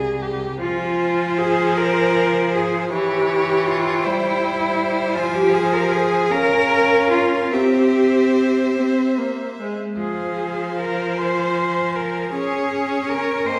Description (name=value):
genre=classical, slow romantic movement for string quartet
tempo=47-54 BPM (dotted quarters)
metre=6/8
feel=rubato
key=F minor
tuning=A4 = 440 Hz
part: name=clear viola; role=accompaniment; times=0.0-13.6 s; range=E3 to Ab4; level=-24 LUFS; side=equal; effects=none
part: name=rich cello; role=bass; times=0.0-13.6 s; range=C2 to C5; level=-22 LUFS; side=equal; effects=none
part: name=clear violin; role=melody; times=0.6-13.6 s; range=E5 to Ab5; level=-32 LUFS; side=equal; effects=none
part: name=rich violin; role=second line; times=0.6-13.6 s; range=Bb4 to Eb5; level=-29 LUFS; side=equal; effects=none
room=wet recital hall reverb, RT60 1.7 s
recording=heard from further back in the room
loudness=-19 LUFS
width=mono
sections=0.6-13.6 A section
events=none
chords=0.0 C5; 0.6 Fm; 2.9 Em6; 5.2 Fm; 6.3 Bbm/Db; 7.5 C; 10.0 Fm; 12.3 Db5